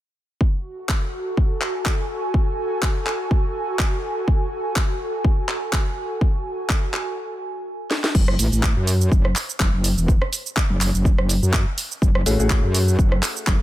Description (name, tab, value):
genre	bass house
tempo	124 BPM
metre	4/4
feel	swing 55% on 16ths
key	F# minor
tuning	A4 = 442 Hz
part	electronic kick drum	drums	0.4-13.6 s	none	-19 LUFS	equal	none
part	airy breathy pad	texture	0.4-7.2 s	F#4 to G#5	-27 LUFS	right 1 dB	chorus, sidechain pumping
part	house drum kit	drums	0.9-13.6 s	crash cymbal, handclaps, hi-hat, rim click, shaker, snare drum	-25 LUFS	right 1 dB	none
part	metallic wobble bass	bass	8.1-13.6 s	E1 to F#2	-20 LUFS	equal	chorus, tube saturation, sidechain pumping
part	warm baby grand piano	stabs	12.3-13.6 s	A3 to G#4	-26 LUFS	left 4 dB	sidechain pumping, ping-pong delay
room	little or no reverb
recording	none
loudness	-19 LUFS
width	side -14 dB against mid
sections	0.4-8.1 A section; 8.1-13.6 B section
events	stop 7.2-8.1; drum fill 7.9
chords	0.4 F#madd9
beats	| 0.41 0.89 1.38 1.86 | 2.34 2.83 3.31 3.79 | 4.28 4.76 5.25 5.73 | 6.21 6.70 7.18 7.67 | 8.15 8.63 9.12 9.60 | 10.08 10.57 11.05 11.54 | 12.02 12.50 12.99 13.47